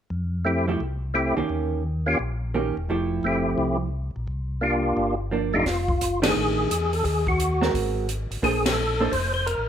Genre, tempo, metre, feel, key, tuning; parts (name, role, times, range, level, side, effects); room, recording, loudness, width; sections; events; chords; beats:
soul jazz organ trio; 173 BPM; 4/4; swing 65% on 8ths; F major; A4 = 441 Hz
mellow tonewheel organ; bass; 0.1-9.7 s; E1 to F2; -28 LUFS; left 1 dB
percussive tonewheel organ; melody; 0.4-9.7 s; F2 to C5; -24 LUFS; left 1 dB; slow rotary speaker, chorus vibrato
vintage hollow-body jazz guitar; accompaniment; 0.7-9.1 s; Eb3 to C5; -27 LUFS; right 4 dB
open jazz drum kit; drums; 5.7-9.6 s; hi-hat, kick drum, ride cymbal, snare drum; -28 LUFS; left 1 dB
light reverb; -22 LUFS; side -9 dB against mid
0.1-5.7 A section; 5.7-9.7 B section
band accent 6.2, 8.6
0.1 Fmaj9; 1.5 Eb7; 2.9 Fmaj9; 4.3 C9sus4; 5.7 F6; 7.0 Ebm; 7.7 Ab9; 8.4 Bbmaj9
| 0.11 0.46 0.81 1.15 | 1.50 1.85 2.19 2.54 | 2.89 3.23 3.58 3.93 | 4.28 4.62 4.97 5.32 | 5.66 6.01 6.36 6.70 | 7.05 7.39 7.74 8.09 | 8.43 8.78 9.12 9.47